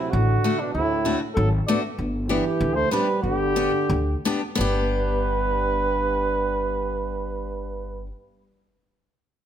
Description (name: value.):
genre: alpine folk, alpine dance band.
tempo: 85-98 BPM.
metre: 2/4.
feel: swing 54% on 8ths, rubato.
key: G major.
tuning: A4 = 440 Hz.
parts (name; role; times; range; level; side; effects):
mellow flugelhorn; melody; 0.0-8.1 s; D4 to D5; -25 LUFS; right 1 dB; none.
warm euphonium; second line; 0.0-8.1 s; G2 to B3; -29 LUFS; right 6 dB; none.
upright bass; bass; 0.1-8.1 s; G1 to D2; -26 LUFS; equal; none.
picked steel-string acoustic guitar; accompaniment; 0.4-8.1 s; A3 to G4; -28 LUFS; left 4 dB; none.
room: moderate recital hall reverb, RT60 1.4 s.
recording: none.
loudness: -21 LUFS.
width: side -10 dB against mid.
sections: 0.0-4.6 A section; 4.6-7.3 B section.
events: slowing down 2.0-4.6.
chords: 0.0 D; 2.0 G.